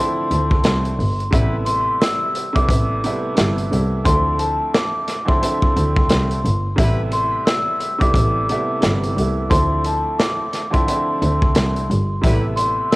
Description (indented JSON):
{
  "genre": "hip hop, boom-bap hip-hop",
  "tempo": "88 BPM",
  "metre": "4/4",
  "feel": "swing 60% on 16ths",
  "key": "A minor",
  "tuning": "A4 = 438 Hz",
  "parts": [
    { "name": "vibraphone with soft mallets", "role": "melody", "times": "0.0-13.0 s", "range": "A5 to E6", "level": "-22 LUFS", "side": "left 1 dB", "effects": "high-pass filter, low-pass filter, cassette tape, tape echo" },
    { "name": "warm upright piano", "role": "accompaniment", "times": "0.0-13.0 s", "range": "C3 to E4", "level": "-24 LUFS", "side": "right 2 dB", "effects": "cassette tape, high-pass filter, low-pass filter" },
    { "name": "clear double bass", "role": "bass", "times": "0.3-12.7 s", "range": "G1 to D2", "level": "-20 LUFS", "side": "equal", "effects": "none" },
    { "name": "crunchy breakbeat drum kit", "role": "drums", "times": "0.3-13.0 s", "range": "hi-hat, kick drum, snare drum", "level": "-20 LUFS", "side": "equal", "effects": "cassette tape" },
    { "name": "warm horn section", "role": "stabs", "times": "1.3-1.5, 6.8-7.0, 12.2-12.5 s", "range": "G3 to B4", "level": "-31 LUFS", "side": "left 2 dB", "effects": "high-pass filter, low-pass filter, cassette tape, tape echo" }
  ],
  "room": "small room ambience",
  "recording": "home recording on cassette",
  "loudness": "-16 LUFS",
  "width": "side -21 dB against mid",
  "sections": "0.0-13.0 A section",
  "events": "none",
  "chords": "0.0 Dm9; 1.3 Am9; 4.1 Dm9; 6.8 Am9; 9.5 Dm9; 12.2 Am9"
}